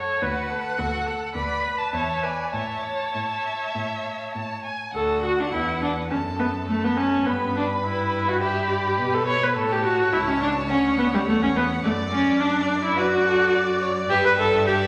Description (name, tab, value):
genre	quick classical-period movement for string quartet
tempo	105 BPM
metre	4/4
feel	straight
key	A major, D major from 4.9 s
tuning	A4 = 440 Hz
part	clear violin	second line	0.0-14.9 s	F#4 to B5	-32 LUFS	equal	none
part	rich viola	accompaniment	0.0-14.7 s	G3 to C#5	-25 LUFS	equal	none
part	rich cello	bass	0.0-14.9 s	C#2 to B2	-33 LUFS	equal	none
part	rich violin	melody	0.2-14.9 s	F#4 to B5	-33 LUFS	equal	none
room	wet recital hall reverb, RT60 1.7 s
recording	none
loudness	-23 LUFS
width	mono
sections	0.0-4.9 A section; 4.9-14.9 B section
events	none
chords	0.2 D; 1.4 Bm/D; 1.9 E7; 2.5 A; 4.9 D; 6.1 F#m; 7.3 G; 9.6 A; 10.7 D; 11.8 D/F#; 14.1 Em7/G